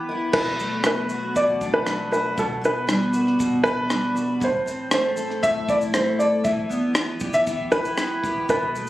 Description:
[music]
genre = acoustic pop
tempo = 118 BPM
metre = 4/4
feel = straight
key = unclear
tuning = A4 = 439 Hz
[part]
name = warm upright piano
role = melody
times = 0.0-8.9 s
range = A4 to E5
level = -22 LUFS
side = equal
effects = tape echo
[part]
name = fingerpicked steel-string acoustic guitar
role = accompaniment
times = 0.0-8.9 s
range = A2 to A4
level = -25 LUFS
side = equal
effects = double-tracked left and right
[part]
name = compact cocktail drum kit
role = drums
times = 0.3-8.9 s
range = crash cymbal, kick drum, rim click, shaker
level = -27 LUFS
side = equal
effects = none
[sound]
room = light reverb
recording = recorded on a phone in the room, studio reverb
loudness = -20 LUFS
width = side -15 dB against mid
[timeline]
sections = 0.3-8.9 A section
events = none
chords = 0.3 Bm7; 2.4 Gmaj7/B; 4.4 Am; 6.5 Em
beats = | 0.34 0.85 1.36 1.87 | 2.38 2.89 3.40 3.91 | 4.42 4.93 5.44 5.95 | 6.46 6.96 7.47 7.98 | 8.49

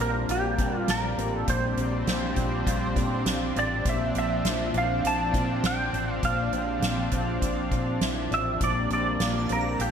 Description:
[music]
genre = dream pop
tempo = 101 BPM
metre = 4/4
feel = straight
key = Bb lydian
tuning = A4 = 440 Hz
[part]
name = clean lap steel guitar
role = melody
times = 0.0-9.9 s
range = G4 to A5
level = -29 LUFS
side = right 2 dB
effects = ensemble chorus, ping-pong delay
[part]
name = lush unison pad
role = sustained chords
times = 0.0-9.9 s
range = F3 to D4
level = -30 LUFS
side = right 1 dB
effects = chorus
[part]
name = electric guitar at the edge of break-up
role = arpeggios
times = 0.0-9.9 s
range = Bb2 to F4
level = -32 LUFS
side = left 4 dB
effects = ensemble chorus, ping-pong delay
[part]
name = vintage muted fingered electric bass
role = bass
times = 0.0-9.9 s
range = A1 to Bb2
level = -32 LUFS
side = equal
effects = none
[part]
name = soft-mallet drum kit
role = drums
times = 0.3-9.9 s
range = hi-hat, kick drum, snare drum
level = -31 LUFS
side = right 1 dB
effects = gated reverb
[part]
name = shimmering bell with halo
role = texture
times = 9.2-9.9 s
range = F5 to Bb5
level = -38 LUFS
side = right 1 dB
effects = ensemble chorus
[sound]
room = moderate plate reverb, RT60 1.4 s, small room ambience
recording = bright 1980s-style digital production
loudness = -24 LUFS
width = side -7 dB against mid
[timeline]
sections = 0.0-9.9 A section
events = none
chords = 0.0 Bb69; 3.9 Dm9; 8.6 Bb69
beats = 0.29 0.88 | 1.48 2.07 2.67 3.26 | 3.85 4.45 5.04 5.64 | 6.23 6.82 7.42 8.01 | 8.61 9.20 9.79

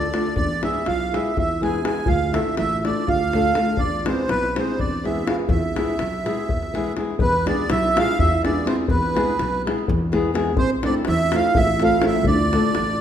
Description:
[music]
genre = balkan folk, Balkan wedding band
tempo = 247 BPM (eighths)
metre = 7/8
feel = straight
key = E phrygian dominant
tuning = A4 = 440 Hz
[part]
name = accordion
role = melody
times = 0.0-13.0 s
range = B4 to G#5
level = -23 LUFS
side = right 2 dB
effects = light tremolo tuning
[part]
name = kalimba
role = second line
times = 0.0-13.0 s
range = B3 to G#4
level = -26 LUFS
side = right 4 dB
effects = none
[part]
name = flamenco guitar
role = accompaniment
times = 0.0-12.7 s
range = G#3 to A4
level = -25 LUFS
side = left 3 dB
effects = none
[part]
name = upright bass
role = bass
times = 0.0-13.0 s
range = A1 to E2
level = -26 LUFS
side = equal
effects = none
[part]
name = davul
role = percussion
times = 0.0-13.0 s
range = none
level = -26 LUFS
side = left 3 dB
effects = none
[sound]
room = wet recital hall reverb, RT60 1.5 s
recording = minimal, uncompressed stereo recording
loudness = -18 LUFS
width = side -9 dB against mid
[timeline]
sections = 0.0-7.2 A section; 7.2-13.0 B section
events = none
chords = 0.4 E; 2.1 Dm; 3.8 E; 10.6 Am; 12.3 Dm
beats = 0.12 | 0.36 0.61 0.85 1.10 1.34 1.58 1.83 | 2.07 2.32 2.56 2.81 3.05 3.30 3.54 | 3.79 4.03 4.27 4.52 4.76 5.00 5.25 | 5.49 5.74 5.98 6.22 6.46 6.71 6.95 | 7.19 7.43 7.68 7.92 8.16 8.40 8.64 | 8.88 9.12 9.37 9.61 9.85 10.09 10.33 | 10.57 10.81 11.05 11.29 11.53 11.78 12.02 | 12.26 12.50 12.74 12.98

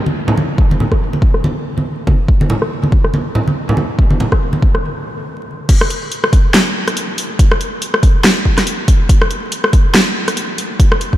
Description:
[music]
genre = dubstep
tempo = 141 BPM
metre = 4/4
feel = swing 57% on 16ths, half-time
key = none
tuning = none
[part]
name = congas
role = percussion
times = 0.1-4.6 s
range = none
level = -18 LUFS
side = right 1 dB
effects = dub echo
[part]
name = electronic kick drum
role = drums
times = 0.6-11.2 s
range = none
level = -12 LUFS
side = equal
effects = studio reverb
[part]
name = deep house drum kit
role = drums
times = 0.9-11.1 s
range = crash cymbal, hi-hat, rim click, snare drum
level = -17 LUFS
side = equal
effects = low-pass filter on hats, studio reverb, low-pass filter on snare, low-pass filter on cymbals
[sound]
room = moderate cathedral reverb, RT60 5.6 s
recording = dreamy mix soaked in reverb, vinyl crackle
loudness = -12 LUFS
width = side -14 dB against mid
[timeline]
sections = 0.0-5.7 A section; 5.7-11.2 B section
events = stop 4.8-5.7; drop 5.7-11.2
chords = none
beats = 0.16 | 0.58 1.01 1.43 1.86 | 2.29 2.71 3.14 3.56 | 3.99 4.41 4.84 5.26 | 5.69 6.12 6.54 6.97 | 7.39 7.82 8.24 8.67 | 9.09 9.52 9.95 10.37 | 10.80

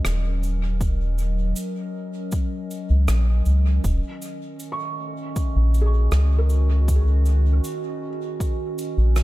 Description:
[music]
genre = ambient dub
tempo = 79 BPM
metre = 4/4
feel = straight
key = Eb minor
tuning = A4 = 441 Hz
[part]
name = warbly tape-like pad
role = sustained chords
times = 0.0-9.2 s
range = Eb3 to Eb5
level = -30 LUFS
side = right 1 dB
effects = chorus, built-in reverb
[part]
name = round analog bass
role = bass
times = 0.0-9.2 s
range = Eb1 to Db2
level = -18 LUFS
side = equal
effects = tube saturation
[part]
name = rim click and cabasa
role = drums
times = 0.0-9.2 s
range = none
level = -33 LUFS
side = right 2 dB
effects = dub echo
[part]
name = electronic kick drum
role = drums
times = 0.8-8.6 s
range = none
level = -24 LUFS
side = equal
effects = overdrive
[part]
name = felt-muted upright piano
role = arpeggios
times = 4.7-9.2 s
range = Ab4 to Db6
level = -34 LUFS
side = equal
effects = vintage 12-bit sampler grit, tape echo
[sound]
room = small room ambience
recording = echo-heavy mix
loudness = -20 LUFS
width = side -17 dB against mid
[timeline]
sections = 0.0-9.2 A section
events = none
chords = 0.0 Ebm7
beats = 0.04 | 0.81 1.56 2.32 3.08 | 3.84 4.60 5.36 6.12 | 6.88 7.64 8.40 9.16

